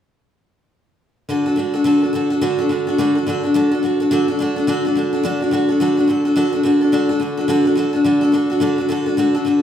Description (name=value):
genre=rock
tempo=213 BPM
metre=4/4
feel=swing 62% on 8ths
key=D major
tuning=A4 = 435 Hz
part: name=picked steel-string acoustic guitar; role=solo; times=1.3-9.6 s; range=D3 to A4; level=-15 LUFS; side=equal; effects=none
room=wet large studio reverb, RT60 1.3 s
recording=band playing live in one room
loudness=-15 LUFS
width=side -9 dB against mid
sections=1.3-5.8 A section; 5.8-9.6 B section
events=none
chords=1.3 D